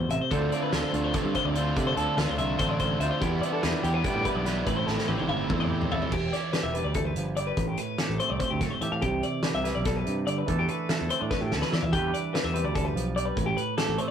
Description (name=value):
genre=math rock and midwest emo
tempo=289 BPM (eighths)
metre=7/8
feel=straight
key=unclear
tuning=A4 = 439 Hz
part: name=twangy electric guitar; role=accompaniment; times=0.0-14.1 s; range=A2 to C5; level=-32 LUFS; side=right 4 dB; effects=none
part: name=twelve-string electric guitar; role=arpeggios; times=0.0-14.1 s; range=G4 to F5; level=-30 LUFS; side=left 2 dB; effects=none
part: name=growling fingered electric bass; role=bass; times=0.0-14.0 s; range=E1 to E3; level=-30 LUFS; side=equal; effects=overdrive
part: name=loose indie drum kit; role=drums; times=0.1-14.1 s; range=crash cymbal, hi-hat, kick drum, snare drum, toms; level=-31 LUFS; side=equal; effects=none
part: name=overdriven electric guitar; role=riff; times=0.3-6.1 s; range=A2 to F4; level=-30 LUFS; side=equal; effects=none
room=light reverb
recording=rough rehearsal-room recording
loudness=-25 LUFS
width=side -8 dB against mid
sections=0.0-6.1 A section; 6.1-14.1 B section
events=drum fill 4.9-6.1, 11.3-11.9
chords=0.3 Dm7; 3.2 Em7; 4.7 Am7; 6.1 Em7; 7.6 Am9; 9.0 Cmaj7; 10.5 E7sus4; 11.9 Em7; 13.4 Am9